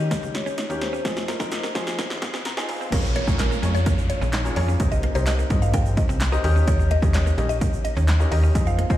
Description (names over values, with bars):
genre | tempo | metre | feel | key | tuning
dance-pop | 128 BPM | 4/4 | straight | Bb dorian | A4 = 440 Hz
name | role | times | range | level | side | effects
marimba with medium hard mallets | melody | 0.0-2.4 s | C5 to Eb5 | -32 LUFS | left 4 dB | ping-pong delay
warm baby grand piano | accompaniment | 0.0-9.0 s | Eb3 to Bb5 | -29 LUFS | left 3 dB | sidechain pumping
slap-like FM bass | bass | 0.0-9.0 s | Bb1 to F3 | -22 LUFS | equal | sidechain pumping
riser and downlifter | sound effects | 0.0-6.7 s | none | -34 LUFS | right 1 dB | none
direct-recorded clean electric guitar | riff | 0.1-9.0 s | G3 to Eb4 | -35 LUFS | right 6 dB | wide subtle chorus
punchy analog drum machine | drums | 0.1-9.0 s | crash cymbal, handclaps, hi-hat, kick drum, snare drum | -24 LUFS | equal | none
tube shaker | percussion | 0.1-9.0 s | none | -43 LUFS | right 9 dB | none
mallet-like synth pluck | melody | 2.9-9.0 s | Bb4 to G5 | -31 LUFS | equal | chorus, phaser, sidechain pumping, ping-pong delay
room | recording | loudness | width
little or no reverb | played on a big sound system in a bare room, stone room reverb, high-pass filter | -20 LUFS | side -13 dB against mid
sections
0.0-2.9 A section; 2.9-9.0 B section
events
build-up 0.0-2.9; drum fill 0.0-2.9; filter sweep 0.0-2.9; grand piano fill 2.2-2.9; drop 2.9-9.0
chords
0.0 Eb7; 1.1 Fm7; 2.9 Bbm7; 4.8 Cm7; 6.4 Eb7